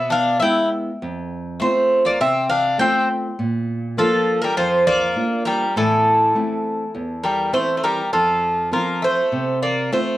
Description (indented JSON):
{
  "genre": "greek folk, Greek bouzouki band",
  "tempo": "101 BPM",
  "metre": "4/4",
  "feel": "straight",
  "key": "unclear",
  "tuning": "A4 = 439 Hz",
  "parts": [
    { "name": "Greek bouzouki", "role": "melody", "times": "0.0-10.2 s", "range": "A4 to G5", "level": "-19 LUFS", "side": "equal", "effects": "none" },
    { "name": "Greek bouzouki", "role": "second line", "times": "0.0-10.2 s", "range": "E3 to E4", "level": "-23 LUFS", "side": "left 2 dB", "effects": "none" },
    { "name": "nylon-string guitar", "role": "accompaniment", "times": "0.0-10.2 s", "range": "E2 to F4", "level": "-25 LUFS", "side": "right 1 dB", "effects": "none" }
  ],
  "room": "moderate small room reverb, RT60 0.5 s",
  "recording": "worn, warbling old tape, cassette tape, warbly pitch drift",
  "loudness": "-17 LUFS",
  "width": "side -15 dB against mid",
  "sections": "0.0-8.1 A section; 8.1-10.2 B section",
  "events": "none",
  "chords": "0.0 E; 1.0 F; 3.4 Bb; 5.8 Am; 8.1 F"
}